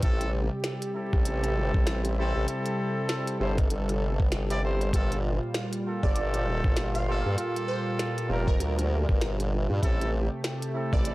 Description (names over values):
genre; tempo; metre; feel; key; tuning
glitch hop; 98 BPM; 4/4; swing 60% on 16ths; unclear; A4 = 444 Hz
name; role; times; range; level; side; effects
warm analog pad; sustained chords; 0.0-11.1 s; Bb2 to A4; -32 LUFS; equal; chorus, sidechain pumping
warm horn section; stabs; 0.0-11.1 s; Bb3 to D5; -33 LUFS; equal; vintage 12-bit sampler grit, sidechain pumping, analog delay
formant-sweep wobble bass; bass; 0.0-11.1 s; F1 to G2; -28 LUFS; equal; chorus, overdrive
electronic kick drum; drums; 0.0-11.0 s; none; -25 LUFS; equal; none
glitchy drum kit; drums; 0.0-11.1 s; hi-hat, rim click, snare drum; -35 LUFS; equal; none
plucky unison lead; melody; 6.0-11.1 s; Bb4 to F5; -36 LUFS; right 2 dB; wide subtle chorus, analog delay
room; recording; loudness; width
little or no reverb; dry, gritty hardware recording, transformer saturation, vinyl crackle; -25 LUFS; side -19 dB against mid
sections
0.0-11.1 A section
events
none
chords
0.0 Am7; 4.9 Gm9; 9.8 Am7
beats
| 0.03 0.64 1.26 1.87 | 2.48 3.09 3.71 4.32 | 4.93 5.54 6.15 6.77 | 7.38 7.99 8.60 9.21 | 9.83 10.44 11.05